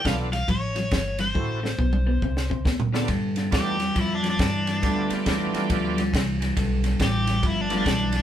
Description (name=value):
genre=electric blues shuffle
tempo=138 BPM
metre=4/4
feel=swing 63% on 8ths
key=G mixolydian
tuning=A4 = 440 Hz
part: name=cranked stack guitar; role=melody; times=0.0-8.2 s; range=D4 to F5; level=-28 LUFS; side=left 1 dB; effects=overdrive
part: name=bright tonewheel organ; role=accompaniment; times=0.0-7.8 s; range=G2 to A4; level=-29 LUFS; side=right 4 dB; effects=overdrive, chorus vibrato, slow rotary speaker
part: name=electric guitar through a small old amp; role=riff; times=0.0-8.2 s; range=G2 to C4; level=-27 LUFS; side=left 1 dB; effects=none
part: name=upright bass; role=bass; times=0.0-8.2 s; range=G1 to G2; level=-27 LUFS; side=equal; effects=none
part: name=compact cocktail drum kit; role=drums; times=0.1-8.2 s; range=kick drum, ride cymbal, snare drum, toms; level=-27 LUFS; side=equal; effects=none
room=moderate studio ambience, RT60 0.5 s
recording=band playing live in one room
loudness=-21 LUFS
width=side -10 dB against mid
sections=0.0-3.1 A section; 3.1-8.2 B section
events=drum fill 1.4-3.1; overdriven electric guitar solo 3.1-8.2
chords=0.0 G7; 1.4 D7; 3.1 G7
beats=0.05 0.48 0.92 | 1.36 1.79 2.23 2.67 | 3.10 3.54 3.97 4.40 | 4.84 5.27 5.70 6.14 | 6.57 7.00 7.43 7.86